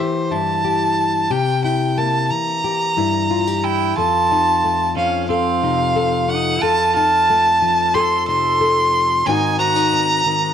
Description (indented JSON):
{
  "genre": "acoustic folk duo or small band",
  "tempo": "91 BPM",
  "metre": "4/4",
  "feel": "straight",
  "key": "unclear",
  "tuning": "A4 = 440 Hz",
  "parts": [
    { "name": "clear fiddle", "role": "melody", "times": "0.0-10.5 s", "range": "C5 to C6", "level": "-17 LUFS", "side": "right 1 dB", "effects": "none" },
    { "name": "nylon-string guitar", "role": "accompaniment", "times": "0.0-10.5 s", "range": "F2 to A4", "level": "-21 LUFS", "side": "left 5 dB", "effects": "none" },
    { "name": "pedal steel guitar", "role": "second line", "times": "3.6-10.5 s", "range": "C4 to A4", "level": "-24 LUFS", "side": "right 13 dB", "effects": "none" }
  ],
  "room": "moderate echo chamber reverb, RT60 1.7 s, small room ambience",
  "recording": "1960s-style stereo",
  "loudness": "-15 LUFS",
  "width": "side -8 dB against mid",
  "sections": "0.0-10.5 A section",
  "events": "none",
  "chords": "0.0 C7; 4.0 F7; 9.3 Ab7"
}